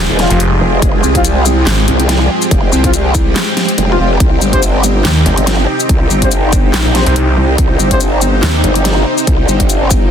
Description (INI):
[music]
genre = heavy wobble dubstep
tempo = 142 BPM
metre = 4/4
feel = swing 55% on 16ths, half-time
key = F minor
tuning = A4 = 442 Hz
[part]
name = supersaw pad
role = sustained chords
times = 0.0-10.1 s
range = C3 to Ab4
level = -18 LUFS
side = equal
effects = phaser, sidechain pumping
[part]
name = snarling distorted saw bass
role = bass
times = 0.0-1.9, 5.0-8.6 s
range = F1 to Eb2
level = -13 LUFS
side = equal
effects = distortion, overdrive
[part]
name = granular cloud pad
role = texture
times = 0.0-10.1 s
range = Ab3 to G5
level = -19 LUFS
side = equal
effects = built-in reverb, sidechain pumping
[part]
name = growl bass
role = bass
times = 0.1-10.1 s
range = Eb1 to C2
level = -13 LUFS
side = equal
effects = chorus, overdrive
[part]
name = dark brass ensemble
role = stabs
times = 0.2-8.0 s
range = F3 to C5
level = -19 LUFS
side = left 3 dB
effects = ping-pong delay
[part]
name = dubstep drum kit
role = drums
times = 0.2-10.0 s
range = handclaps, hi-hat, shaker, snare drum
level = -17 LUFS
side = left 1 dB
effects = none
[part]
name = electronic kick drum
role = drums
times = 0.8-10.0 s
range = none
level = -13 LUFS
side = equal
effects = none
[sound]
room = little or no reverb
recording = dense, heavily limited modern master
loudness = -9 LUFS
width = side -8 dB against mid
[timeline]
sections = 0.0-10.1 A section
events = none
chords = 0.0 Fmadd9; 4.2 Cm